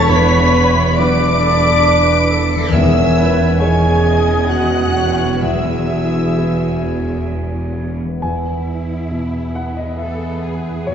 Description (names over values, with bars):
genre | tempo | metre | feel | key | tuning
cinematic | 64-70 BPM | 3/4 | rubato | E major | A4 = 443 Hz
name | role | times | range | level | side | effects
clear studio violin section | melody | 0.0-10.9 s | G#4 to D7 | -24 LUFS | left 2 dB | none
clear oboe | second line | 0.0-7.8 s | G#5 to B5 | -27 LUFS | left 1 dB | none
dark clarinet | second line | 0.0-7.9 s | C#4 to F#4 | -26 LUFS | right 1 dB | none
mellow hollow concert flute | second line | 0.0-7.3 s | E5 to D6 | -23 LUFS | left 1 dB | none
rich symphonic violin section | second line | 0.0-10.9 s | E4 to D6 | -25 LUFS | left 1 dB | none
rich symphonic viola section | accompaniment | 0.0-10.9 s | B3 to D#5 | -25 LUFS | right 1 dB | none
warm concert grand piano | accompaniment | 0.0-10.9 s | E2 to G#5 | -21 LUFS | equal | none
mellow French horn section | sustained chords | 0.0-7.2 s | C#4 to D5 | -20 LUFS | equal | none
concert harp | arpeggios | 0.0-10.9 s | D#3 to C#5 | -26 LUFS | left 4 dB | none
rich symphonic cello section | bass | 0.0-10.9 s | E2 to A4 | -22 LUFS | right 2 dB | none
rich symphonic double bass section | bass | 0.0-10.9 s | E1 to E2 | -20 LUFS | right 2 dB | none
timpani | percussion | 2.7-4.0 s | E2 | -21 LUFS | left 2 dB | none
room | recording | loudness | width
wet scoring stage reverb, RT60 1.5 s | heard from further back in the room, nothing above 7.8 kHz | -13 LUFS | side -8 dB against mid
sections
0.0-8.2 A section; 8.2-10.9 B section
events
none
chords
0.0 Bm/E; 2.7 C#madd9/E; 5.4 Eadd9; 8.2 E